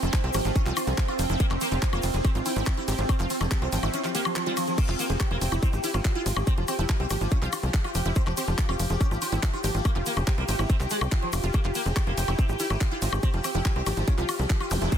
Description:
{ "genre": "psychedelic trance", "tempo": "142 BPM", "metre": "4/4", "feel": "straight", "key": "F harmonic minor", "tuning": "A4 = 440 Hz", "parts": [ { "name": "sitar", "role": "melody", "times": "0.0-15.0 s", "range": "C3 to F4", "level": "-33 LUFS", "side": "equal", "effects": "phaser, sidechain pumping, dub echo" }, { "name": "bubbling stepped-filter texture", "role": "sustained chords", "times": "0.0-15.0 s", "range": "C4 to G4", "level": "-33 LUFS", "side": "right 1 dB", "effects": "chorus, built-in reverb, sidechain pumping" }, { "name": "wide unison pluck", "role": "riff", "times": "0.0-15.0 s", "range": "E4 to G5", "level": "-34 LUFS", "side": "right 2 dB", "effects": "auto-pan, sidechain pumping, dub echo" }, { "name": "tight sequencer bass", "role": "bass", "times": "0.0-14.9 s", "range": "F1 to C2", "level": "-27 LUFS", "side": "equal", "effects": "none" }, { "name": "garage drum kit", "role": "drums", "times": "0.0-15.0 s", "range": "crash cymbal, handclaps, hi-hat, ride cymbal, woodblock", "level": "-33 LUFS", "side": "left 2 dB", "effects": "none" }, { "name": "egg shaker", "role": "percussion", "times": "0.0-15.0 s", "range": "none", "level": "-40 LUFS", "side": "left 4 dB", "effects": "none" }, { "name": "electronic kick drum", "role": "drums", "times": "0.1-15.0 s", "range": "none", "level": "-24 LUFS", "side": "equal", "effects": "none" }, { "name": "zap", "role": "sound effects", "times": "14.7-14.8 s", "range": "none", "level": "-31 LUFS", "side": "left 1 dB", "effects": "none" } ], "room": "little or no reverb", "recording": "dense, heavily limited modern master", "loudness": "-23 LUFS", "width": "side -9 dB against mid", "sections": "0.0-4.8 A section; 4.8-15.0 A section", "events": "drop 0.0-4.8, 4.8-15.0", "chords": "0.0 F5" }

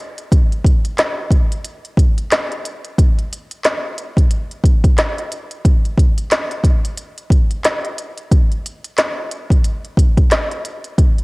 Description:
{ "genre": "hip hop", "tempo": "90 BPM", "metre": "4/4", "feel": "swing 58% on 16ths", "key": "none", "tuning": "none", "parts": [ { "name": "organic electronic drum kit", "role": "drums", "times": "0.2-11.2 s", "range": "handclaps, hi-hat, kick drum, snare drum", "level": "-14 LUFS", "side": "equal", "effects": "none" } ], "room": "little or no reverb", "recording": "home recording on cassette", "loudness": "-14 LUFS", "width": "side -27 dB against mid", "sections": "0.0-11.2 A section", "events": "none", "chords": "none" }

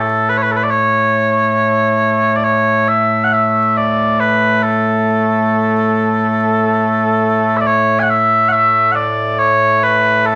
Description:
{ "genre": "scottish traditional, Scottish pipe music", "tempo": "69 BPM", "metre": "3/4", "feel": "straight", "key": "A major", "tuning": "A4 = 440 Hz", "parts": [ { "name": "mellow small bagpipes", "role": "solo", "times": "0.0-10.4 s", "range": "A2 to G#5", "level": "-14 LUFS", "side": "equal", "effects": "none" } ], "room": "moderate studio reverb, RT60 0.8 s", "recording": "vinyl crackle", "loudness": "-14 LUFS", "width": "mono", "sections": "0.0-7.7 A section; 7.7-10.4 A section", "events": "none", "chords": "none" }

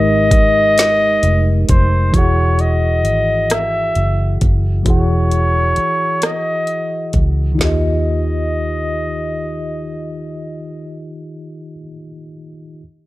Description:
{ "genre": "slow six-eight R&B", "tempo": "44 BPM (dotted quarters)", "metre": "6/8", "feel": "straight", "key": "unclear", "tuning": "A4 = 444 Hz", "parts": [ { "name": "warm flugelhorn", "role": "melody", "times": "0.0-11.1 s", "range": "C5 to E5", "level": "-18 LUFS", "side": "equal", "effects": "slapback echo" }, { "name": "mellow tine electric piano", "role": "accompaniment", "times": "0.0-12.8 s", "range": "Eb3 to F#5", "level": "-22 LUFS", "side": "left 1 dB", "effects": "medium stereo tremolo" }, { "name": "vintage muted fingered electric bass", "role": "bass", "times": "0.0-11.8 s", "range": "E1 to Eb2", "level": "-17 LUFS", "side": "equal", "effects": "none" }, { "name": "smooth R&B drum kit", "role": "drums", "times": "0.3-7.8 s", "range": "hi-hat, kick drum, rim click, snare drum, toms", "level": "-16 LUFS", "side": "equal", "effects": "none" } ], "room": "little or no reverb", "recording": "none", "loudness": "-13 LUFS", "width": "side -17 dB against mid", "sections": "0.0-2.1 A section; 2.1-7.6 B section; 7.6-10.3 C section", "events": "none", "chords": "0.0 Abmaj9; 2.1 Emaj9; 7.6 Eb" }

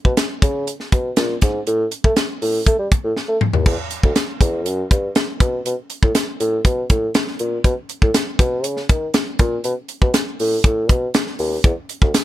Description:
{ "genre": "polished 1980s jazz-funk pop", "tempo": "120 BPM", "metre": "4/4", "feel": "straight", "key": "unclear", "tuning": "A4 = 443 Hz", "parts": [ { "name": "tight funk drum kit", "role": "drums", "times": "0.0-12.2 s", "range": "crash cymbal, hi-hat, kick drum, snare drum, toms", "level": "-17 LUFS", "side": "equal", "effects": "none" }, { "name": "dark bassoon", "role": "bass", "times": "0.1-12.1 s", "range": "D2 to A3", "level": "-20 LUFS", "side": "equal", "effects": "none" } ], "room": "little or no reverb", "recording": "none", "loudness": "-16 LUFS", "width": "side -14 dB against mid", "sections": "0.0-3.7 A section; 3.7-12.2 B section", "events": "drum fill 3.2-3.7", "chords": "none" }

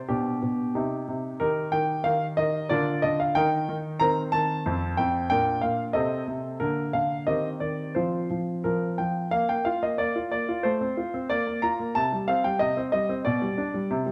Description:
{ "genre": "classical-period piano sonatina", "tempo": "92 BPM", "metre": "2/4", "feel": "rubato", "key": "Bb major from 4.0 s", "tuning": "A4 = 439 Hz", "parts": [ { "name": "clear grand piano", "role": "solo", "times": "0.0-14.1 s", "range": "F2 to Bb5", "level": "-26 LUFS", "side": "equal", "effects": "none" } ], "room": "moderate recital hall reverb, RT60 1.6 s", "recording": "none", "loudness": "-26 LUFS", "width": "mono", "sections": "0.0-9.3 A section; 9.3-14.1 B section", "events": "none", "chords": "0.1 G/B; 0.8 Cm; 1.4 Eb; 2.7 Bb/D; 3.4 Eb; 4.0 Cm7/Eb; 4.7 F; 5.3 Bb; 6.0 Cm6; 6.6 Bb/D; 7.3 Cm/Eb; 8.0 F5; 9.3 Bb5; 10.7 F/A; 11.3 Bb; 12.0 C5; 13.3 G/B" }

